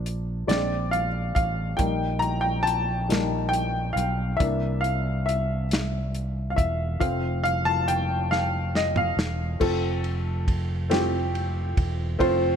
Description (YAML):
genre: slow gospel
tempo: 46 BPM (dotted quarters)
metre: 6/8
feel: straight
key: unclear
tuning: A4 = 440 Hz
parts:
  - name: warm upright piano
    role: accompaniment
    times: 0.0-12.6 s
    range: E3 to Bb5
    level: -26 LUFS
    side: left 1 dB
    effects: none
  - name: fingered electric bass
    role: bass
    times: 0.0-12.6 s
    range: E1 to C2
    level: -27 LUFS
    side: right 1 dB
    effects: none
  - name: warm soul drum kit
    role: drums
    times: 0.1-12.4 s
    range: crash cymbal, hi-hat, kick drum, ride cymbal, snare drum, toms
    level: -28 LUFS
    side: equal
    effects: none
room: light reverb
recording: none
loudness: -23 LUFS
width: side -7 dB against mid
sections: 0.0-9.6 A section; 9.6-12.6 B section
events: upright piano solo 0.0-9.6; drum fill 8.3-9.6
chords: 0.5 Bb7; 1.8 Eb/Bb; 4.4 C7; 7.0 F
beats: 0.49 | 1.79 3.10 | 4.40 5.70 | 7.00 8.30 | 9.61 10.91 | 12.21